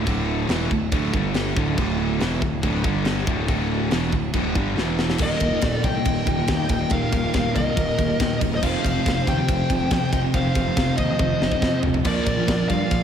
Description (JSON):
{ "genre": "heavy metal", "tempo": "140 BPM", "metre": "4/4", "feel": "straight", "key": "unclear", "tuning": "A4 = 439 Hz", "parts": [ { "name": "distorted electric guitar", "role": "riff", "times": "0.0-13.0 s", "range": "D2 to Bb3", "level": "-29 LUFS", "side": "left 8 dB", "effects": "distortion, slapback echo" }, { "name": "distorted electric guitar", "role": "riff", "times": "0.0-13.0 s", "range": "D2 to Bb3", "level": "-28 LUFS", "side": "equal", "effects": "distortion" }, { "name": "sludgy distorted guitar", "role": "riff", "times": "0.0-13.0 s", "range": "D2 to Bb3", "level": "-28 LUFS", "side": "right 8 dB", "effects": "overdrive" }, { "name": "fuzz picked electric bass", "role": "bass", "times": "0.0-13.0 s", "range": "D1 to G2", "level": "-27 LUFS", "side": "equal", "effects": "overdrive" }, { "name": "tight metal drum kit", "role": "drums", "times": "0.1-13.0 s", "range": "crash cymbal, kick drum, ride cymbal, snare drum, toms", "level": "-25 LUFS", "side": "equal", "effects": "none" }, { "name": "high-gain lead guitar", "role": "melody", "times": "5.2-13.0 s", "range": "D5 to G5", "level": "-26 LUFS", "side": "left 1 dB", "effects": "distortion, slapback echo, digital delay" }, { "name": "high-gain lead guitar", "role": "second line", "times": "5.2-13.0 s", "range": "Bb4 to Eb5", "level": "-32 LUFS", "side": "right 2 dB", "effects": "distortion, slapback echo" } ], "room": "moderate lush hall reverb, RT60 1.8 s", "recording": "big arena sound", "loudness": "-19 LUFS", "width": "side -8 dB against mid", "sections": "0.0-5.2 A section; 5.2-13.0 B section", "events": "drum fill 4.8-5.2, 11.2-12.0", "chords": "0.0 D5; 1.1 G5; 1.6 D5; 2.8 G5; 3.3 D5; 4.8 E5; 5.2 Eb; 8.6 F5; 12.0 Bb" }